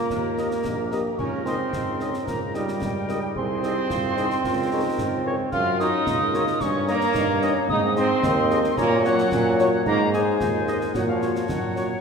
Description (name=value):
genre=military-style march for wind band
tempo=111 BPM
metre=2/4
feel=straight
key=unclear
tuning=A4 = 440 Hz
part: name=mellow hollow piccolo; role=second line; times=0.0-12.0 s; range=F5 to F6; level=-30 LUFS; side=left 3 dB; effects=none
part: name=warm euphonium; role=second line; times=0.0-11.9 s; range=Bb3 to Ab4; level=-30 LUFS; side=right 1 dB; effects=none
part: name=warm woodwind section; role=second line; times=0.0-12.0 s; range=Eb4 to Eb5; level=-33 LUFS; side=left 1 dB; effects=none
part: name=mellow trombone section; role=sustained chords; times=0.0-12.0 s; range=F3 to F4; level=-25 LUFS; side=right 2 dB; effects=none
part: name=warm tuba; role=bass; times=0.1-11.9 s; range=Bb1 to Bb2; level=-26 LUFS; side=right 2 dB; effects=none
part: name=concert snare drum, concert bass drum and clash cymbals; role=drums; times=0.1-11.9 s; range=none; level=-33 LUFS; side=left 2 dB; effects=none
part: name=mellow cornet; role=melody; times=0.4-11.9 s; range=Db5 to Eb5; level=-36 LUFS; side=right 1 dB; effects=none
part: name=dark French horn section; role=accompaniment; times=0.4-11.9 s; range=Eb4 to Db5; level=-32 LUFS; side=left 5 dB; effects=none
room=wet concert hall reverb, RT60 2.1 s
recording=minimal, uncompressed stereo recording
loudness=-20 LUFS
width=side -6 dB against mid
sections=0.0-12.0 A section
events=none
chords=0.1 Eb; 1.2 Eb7/Db; 3.4 Ab/C; 4.4 Bbm7/Db; 5.5 Gbmaj7; 6.6 Eb7/G; 7.7 Ab; 8.8 Gb/Bb; 9.9 Ab; 10.9 Gb/Bb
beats=| 0.10 0.65 | 1.19 1.73 | 2.27 2.81 | 3.36 3.90 | 4.44 4.98 | 5.53 6.07 | 6.61 7.15 | 7.69 8.24 | 8.78 9.32 | 9.86 10.40 | 10.95 11.49